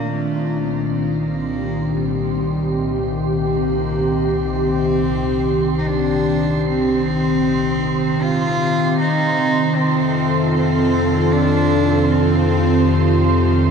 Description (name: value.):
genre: ambient.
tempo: free time.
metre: none.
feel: none.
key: C dorian.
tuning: A4 = 437 Hz.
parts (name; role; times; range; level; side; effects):
rich cello; melody; 0.0-13.3 s; G3 to F4; -23 LUFS; right 1 dB; shimmer reverb, diffuse ambient delay.
airy breathy pad; sustained chords; 0.0-13.7 s; Bb2 to A4; -18 LUFS; equal; chorus, shimmer reverb.
deep rumbling drone; bass; 0.8-13.7 s; C2 to F2; -25 LUFS; equal; built-in reverb.
overtone-sweeping drone; drone; 2.8-13.7 s; C3; -28 LUFS; right 1 dB; chorus, built-in reverb.
wind-like tuned noise texture; texture; 0.3-13.7 s; C6; -30 LUFS; right 7 dB; built-in reverb, wide subtle chorus, shimmer reverb.
room: moderate plate reverb, RT60 3.5 s.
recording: dreamy mix soaked in reverb.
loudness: -16 LUFS.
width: side -6 dB against mid.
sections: 0.0-13.7 A section.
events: fade-in on synth drone 0.0-13.7; fade-in on synth texture 0.0-13.7; fade-in on cello 0.0-13.7.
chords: 0.0 Cm7; 9.0 F7.